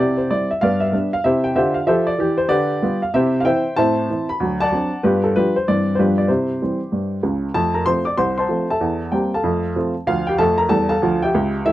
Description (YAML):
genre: jazz, stride piano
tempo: 190 BPM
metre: 4/4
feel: swing 64% on 8ths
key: C major, F major from 7.5 s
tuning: A4 = 439 Hz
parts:
  - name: clear upright piano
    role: solo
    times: 0.0-11.7 s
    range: C2 to D6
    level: -16 LUFS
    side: equal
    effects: none
room: little or no reverb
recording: dry, close 1970s-style studio recording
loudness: -16 LUFS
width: side -14 dB against mid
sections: 0.0-7.5 A section; 7.5-11.7 B section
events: none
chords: 0.0 C; 0.6 G; 1.2 C; 2.5 G7/D; 3.1 C; 3.8 Am; 4.4 D7; 5.0 G7; 5.7 C/G; 6.0 G7; 6.3 C; 7.5 F; 8.8 C7/E; 9.4 F; 10.1 Dm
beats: 0.29 0.61 0.92 | 1.24 1.55 1.87 2.18 | 2.50 2.81 3.13 3.44 | 3.76 4.07 4.39 4.70 | 5.02 5.34 5.65 5.97 | 6.28 6.60 6.91 7.23 | 7.54 7.86 8.18 8.49 | 8.81 9.12 9.44 9.75 | 10.07 10.38 10.70 11.01 | 11.33 11.64